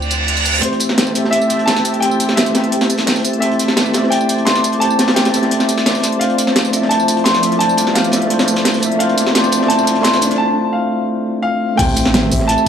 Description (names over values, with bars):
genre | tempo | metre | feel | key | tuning
liquid drum and bass | 172 BPM | 4/4 | straight | unclear | A4 = 440 Hz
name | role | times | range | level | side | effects
warm baby grand piano | melody | 0.0-12.7 s | C5 to C6 | -19 LUFS | left 1 dB | digital delay
tine electric piano | accompaniment | 0.0-12.7 s | A3 to E5 | -17 LUFS | equal | fast stereo tremolo, low-pass filter
lush unison pad | sustained chords | 0.0-12.7 s | F3 to A5 | -24 LUFS | equal | chorus, phaser, sidechain pumping
sub bass with octave | bass | 0.0-12.6 s | E1 to D2 | -29 LUFS | equal | high-pass filter
pop drum kit | drums | 0.0-12.6 s | crash cymbal, hi-hat, snare drum, tambourine | -19 LUFS | equal | high-pass filter on hats, high-pass filter on perc, high-pass filter on snare, high-pass filter on cymbals
reverse cymbal, riser and sub drop | sound effects | 0.0-0.6, 7.8-12.7 s | none | -22 LUFS | right 2 dB | none
crunchy breakbeat drum kit | drums | 0.6-12.6 s | hi-hat, snare drum | -20 LUFS | equal | high-pass filter on hats, high-pass filter on snare, high-pass filter on room
electronic kick drum | drums | 11.8-12.4 s | none | -20 LUFS | equal | none
room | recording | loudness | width
moderate plate reverb, RT60 1.3 s, studio ambience | small room ambience | -12 LUFS | side -8 dB against mid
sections
0.6-11.8 A section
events
reverse cymbal 0.0-0.6; build-up 0.6-11.8; riser 7.8-10.4; break 10.4-11.8; impact 11.8-12.7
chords
0.0 Dm7; 0.6 Am7; 6.2 Dm7; 11.8 Am7